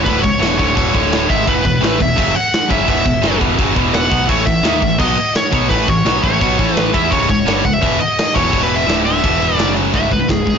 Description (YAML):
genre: heavy metal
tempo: 170 BPM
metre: 4/4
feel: straight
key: C# minor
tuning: A4 = 440 Hz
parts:
  - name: high-gain lead guitar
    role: melody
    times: 0.0-10.6 s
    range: G#4 to F#5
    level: -18 LUFS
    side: equal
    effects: distortion
  - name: distorted electric guitar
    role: riff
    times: 0.0-10.6 s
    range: C#2 to E4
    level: -19 LUFS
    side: right 15 dB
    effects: overdrive
  - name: tight distorted guitar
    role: riff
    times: 0.0-10.6 s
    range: C#2 to E4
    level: -20 LUFS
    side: left 16 dB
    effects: distortion
  - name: growling picked electric bass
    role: bass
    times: 0.0-10.6 s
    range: C#1 to E2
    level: -23 LUFS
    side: equal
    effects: overdrive
  - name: big rock drum kit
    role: drums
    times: 0.1-10.6 s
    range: crash cymbal, kick drum, snare drum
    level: -18 LUFS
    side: equal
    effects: soft clipping on snare
room: little or no reverb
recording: blown-out, overdriven recording, overdrive, nothing above 7.5 kHz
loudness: -12 LUFS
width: side -7 dB against mid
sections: 0.0-9.9 A section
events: none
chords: 0.0 C#m; 0.9 D5; 1.3 Emaj7/G#; 1.5 E5; 4.3 A5; 7.1 C#m; 8.5 E5; 8.9 D5; 9.2 E5; 9.6 F#5; 9.9 C#m